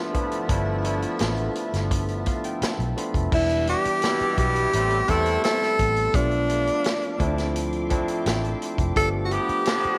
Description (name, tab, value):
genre	lush 1970s-style soul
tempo	85 BPM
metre	4/4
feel	straight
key	unclear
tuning	A4 = 436 Hz
part	barky tine electric piano	accompaniment	0.0-10.0 s	E3 to B5	-31 LUFS	equal	overdrive
part	soft string machine	sustained chords	0.0-10.0 s	F3 to D6	-38 LUFS	equal	ensemble chorus
part	warm horn section	stabs	0.0-10.0 s	A2 to G4	-33 LUFS	equal	none
part	vintage drum kit	drums	0.1-10.0 s	crash cymbal, hi-hat, kick drum, snare drum	-30 LUFS	equal	none
part	vintage muted fingered electric bass	bass	0.5-9.9 s	E1 to E2	-29 LUFS	equal	none
part	breathy tenor saxophone	melody	3.3-10.0 s	D4 to A4	-25 LUFS	equal	none
room	light reverb, small room reverb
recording	none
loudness	-24 LUFS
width	mono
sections	0.0-3.3 A section; 3.3-10.0 B section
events	tine electric piano fill 1.9-3.3, 7.6-9.0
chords	0.0 G13; 3.3 Em7; 4.7 Am7; 6.1 Bm7b5; 7.2 Dm9; 9.0 G7